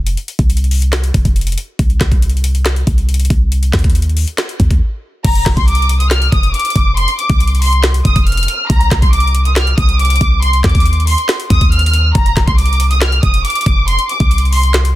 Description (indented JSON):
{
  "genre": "hip hop, trap",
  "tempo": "139 BPM",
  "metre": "4/4",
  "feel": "half-time",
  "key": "unclear",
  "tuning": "A4 = 440 Hz",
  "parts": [
    { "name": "warm 808-style bass", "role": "bass", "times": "0.0-14.9 s", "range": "F1 to Eb2", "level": "-13 LUFS", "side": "equal", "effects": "none" },
    { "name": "trap drum kit", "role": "drums", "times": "0.1-14.9 s", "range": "crash cymbal, handclaps, hi-hat, kick drum, snare drum", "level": "-15 LUFS", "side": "equal", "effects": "none" },
    { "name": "warm symphonic violin section", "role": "melody", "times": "5.2-14.7 s", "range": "Bb5 to F6", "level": "-16 LUFS", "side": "equal", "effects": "low-pass filter, tape echo" }
  ],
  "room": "little or no reverb",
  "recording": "dense, heavily limited modern master",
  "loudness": "-11 LUFS",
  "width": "side -15 dB against mid",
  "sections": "0.0-5.2 A section; 5.2-15.0 B section",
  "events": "break 0.0-5.2",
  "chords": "0.0 F5; 1.8 Cm; 5.2 F5; 8.7 Cm; 12.2 F5"
}